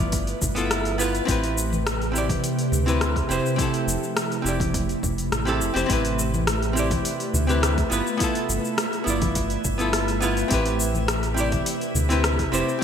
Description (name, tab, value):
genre	sunset chillout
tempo	104 BPM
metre	4/4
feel	straight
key	A minor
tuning	A4 = 438 Hz
part	archtop guitar, miked and amplified	accompaniment	0.0-12.8 s	B3 to D5	-26 LUFS	equal	auto-pan, digital delay
part	ethereal airy pad	sustained chords	0.0-12.8 s	C3 to B4	-29 LUFS	right 1 dB	ensemble chorus, built-in reverb
part	round analog bass	bass	0.0-12.6 s	F1 to D2	-26 LUFS	equal	none
part	deep house drum kit	drums	0.1-12.8 s	hi-hat, rim click, shaker	-28 LUFS	left 2 dB	overdrive, gated reverb
part	electronic kick drum	drums	0.1-12.8 s	none	-28 LUFS	equal	overdrive
part	congas	percussion	0.4-12.1 s	none	-32 LUFS	left 2 dB	none
part	drifting glass-harmonics texture	texture	6.2-12.8 s	E4 to E5	-34 LUFS	right 3 dB	chorus, built-in reverb
room	moderate lush hall reverb, RT60 1.9 s, digital ambience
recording	bright 1980s-style digital production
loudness	-21 LUFS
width	side -8 dB against mid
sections	0.0-12.8 A section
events	none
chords	0.0 G13; 1.3 Am9; 3.3 Fmaj7; 5.9 Am9; 7.9 G13; 10.5 Am9